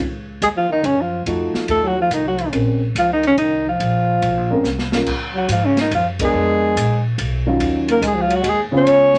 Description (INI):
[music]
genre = jazz, small-group swing and bop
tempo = 142 BPM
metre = 3/4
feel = swing 66% on 8ths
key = Bb minor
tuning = A4 = 440 Hz
[part]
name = upright bass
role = bass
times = 0.0-9.2 s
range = Ab1 to Ab2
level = -26 LUFS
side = equal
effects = none
[part]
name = breathy alto saxophone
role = melody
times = 0.4-9.2 s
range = Db4 to Db5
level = -19 LUFS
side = equal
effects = none
[part]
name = mellow trombone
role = second line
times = 0.4-9.2 s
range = Db3 to Db4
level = -25 LUFS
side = equal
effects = none
[part]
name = open jazz drum kit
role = drums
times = 0.4-9.2 s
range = crash cymbal, hi-hat, kick drum, ride cymbal, snare drum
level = -30 LUFS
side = equal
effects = none
[part]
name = dark concert grand piano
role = accompaniment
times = 1.3-9.2 s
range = Db3 to Bb4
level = -23 LUFS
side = equal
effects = none
[sound]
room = moderate studio ambience, RT60 0.5 s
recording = nothing above 10.4 kHz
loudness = -18 LUFS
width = mono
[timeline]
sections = 0.0-5.1 A section; 5.1-9.2 B section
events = drum fill 4.7-5.1; band accent 6.1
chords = 0.0 Dbsus2; 1.3 F7b9; 2.5 Bbm9; 5.1 Db5; 6.3 Bb7b9; 7.6 Ebm9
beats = 0.42 0.84 | 1.27 1.69 2.12 | 2.54 2.96 3.39 | 3.81 4.23 4.66 | 5.08 5.50 5.92 | 6.35 6.77 7.19 | 7.61 8.04 8.46 | 8.88